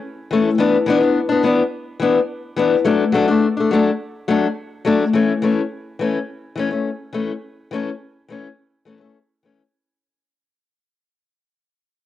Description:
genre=highlife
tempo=105 BPM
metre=4/4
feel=straight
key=A major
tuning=A4 = 440 Hz
part: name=fingerpicked acoustic archtop guitar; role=solo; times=0.3-9.6 s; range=E3 to D4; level=-16 LUFS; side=left 4 dB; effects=cassette tape
room=moderate spring reverb, RT60 1.5 s, studio ambience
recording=home recording on cassette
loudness=-16 LUFS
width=side -12 dB against mid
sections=0.0-5.1 A section; 5.1-9.7 B section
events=fade-out 5.1-9.7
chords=0.0 A; 0.6 Bmadd11/E; 2.9 D; 5.1 A

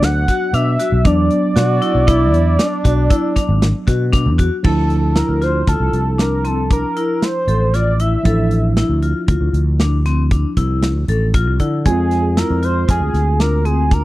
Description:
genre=progressive instrumental, band music in an uneven meter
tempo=117 BPM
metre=7/4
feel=straight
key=D minor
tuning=A4 = 440 Hz
part: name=octave-doubled lead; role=melody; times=0.0-14.0 s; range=Ab4 to F#5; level=-21 LUFS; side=right 2 dB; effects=chorus
part: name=tine electric piano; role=accompaniment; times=0.0-14.0 s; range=F3 to F4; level=-23 LUFS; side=right 2 dB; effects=medium stereo tremolo
part: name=vibraphone with medium hard mallets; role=arpeggios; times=0.0-14.0 s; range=C4 to A4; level=-23 LUFS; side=left 5 dB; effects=none
part: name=sustaining fretless electric bass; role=bass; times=0.0-14.0 s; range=G#1 to D3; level=-16 LUFS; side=equal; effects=none
part: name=modern studio drum kit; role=drums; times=0.0-14.0 s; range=crash cymbal, hi-hat, kick drum, snare drum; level=-16 LUFS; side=equal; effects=none
part: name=warm flugelhorn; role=second line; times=1.6-3.6 s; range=D4 to F#4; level=-22 LUFS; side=right 5 dB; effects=none
room=studio reverb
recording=dry, close 1970s-style studio recording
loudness=-13 LUFS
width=side -17 dB against mid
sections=0.0-4.6 A section; 4.6-14.0 B section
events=none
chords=0.0 Bm; 4.6 Dmadd9; 11.9 Fm

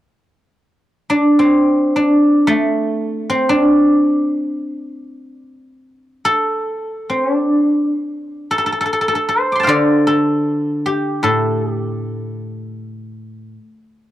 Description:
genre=chinese traditional, Chinese solo plucked strings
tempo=free time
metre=none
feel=none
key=D yu mode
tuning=A4 = 440 Hz
part: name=guzheng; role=solo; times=1.1-13.5 s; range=A2 to D6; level=-14 LUFS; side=equal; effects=none
room=small room ambience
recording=home recording on cassette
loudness=-14 LUFS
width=side -13 dB against mid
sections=0.2-8.1 A section; 8.1-14.1 B section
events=none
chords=none

